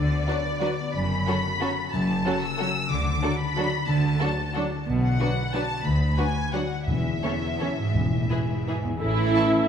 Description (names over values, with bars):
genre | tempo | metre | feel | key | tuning
classical, orchestral ballroom waltz | 159-199 BPM | 3/4 | rubato | A major | A4 = 440 Hz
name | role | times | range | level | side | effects
warm symphonic violin section | melody | 0.0-9.4 s | D5 to E6 | -30 LUFS | left 2 dB | none
concert harp | arpeggios | 0.0-9.7 s | F#2 to C#5 | -31 LUFS | left 5 dB | none
rich symphonic cello section | bass | 0.0-9.6 s | D2 to E3 | -29 LUFS | right 2 dB | none
rich symphonic double bass section | bass | 0.0-9.3 s | E1 to D2 | -29 LUFS | right 1 dB | none
rich symphonic violin section | second line | 0.3-9.4 s | F#4 to A5 | -34 LUFS | left 1 dB | none
rich symphonic viola section | accompaniment | 0.3-9.6 s | E3 to E4 | -29 LUFS | right 2 dB | none
timpani | percussion | 6.9-8.5 s | E2 | -31 LUFS | left 1 dB | none
mellow clarinet | second line | 9.0-9.7 s | C#4 | -33 LUFS | left 4 dB | none
mellow hollow concert flute | second line | 9.0-9.6 s | E5 | -35 LUFS | left 1 dB | none
warm oboe | second line | 9.0-9.7 s | E5 | -32 LUFS | right 3 dB | none
dark bassoon | accompaniment | 9.0-9.7 s | A3 | -29 LUFS | right 4 dB | none
warm French horn section | sustained chords | 9.0-9.7 s | A3 to C#4 | -30 LUFS | left 7 dB | none
room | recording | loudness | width
moderate scoring stage reverb, RT60 1.6 s | minimal, uncompressed stereo recording | -22 LUFS | side -8 dB against mid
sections
0.0-9.0 A section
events
none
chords
0.0 Bm/D; 0.9 F#m; 2.9 D; 4.9 Bm; 5.9 Bm/D; 6.9 A/E; 8.0 E; 9.0 A